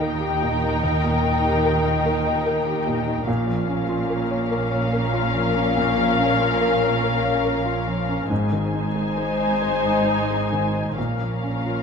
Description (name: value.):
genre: cinematic, emotional film score for orchestra.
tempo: 44-50 BPM (dotted quarters).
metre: 6/8.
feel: rubato.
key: Bb dorian.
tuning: A4 = 440 Hz.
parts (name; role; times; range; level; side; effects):
muted studio violin section; melody; 0.0-11.8 s; F5 to Ab5; -26 LUFS; left 4 dB; none.
muted studio violin section; second line; 0.0-11.8 s; Bb4 to C5; -28 LUFS; left 5 dB; none.
felt-muted upright piano; accompaniment; 0.0-11.8 s; Eb2 to Eb5; -25 LUFS; equal; none.
muted studio viola section; accompaniment; 0.0-11.8 s; Db4 to Eb4; -29 LUFS; right 1 dB; none.
muted studio cello section; bass; 0.0-11.8 s; Ab2 to Eb3; -28 LUFS; right 2 dB; none.
muted studio double bass section; bass; 0.0-11.8 s; Ab1 to Eb2; -29 LUFS; right 4 dB; none.
room: moderate scoring stage reverb, RT60 1.9 s.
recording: close, detailed microphones.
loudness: -19 LUFS.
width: side -6 dB against mid.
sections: 0.0-11.8 A section.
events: none.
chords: 0.0 Eb; 3.3 Bbm; 8.3 Ab; 11.0 Bbm.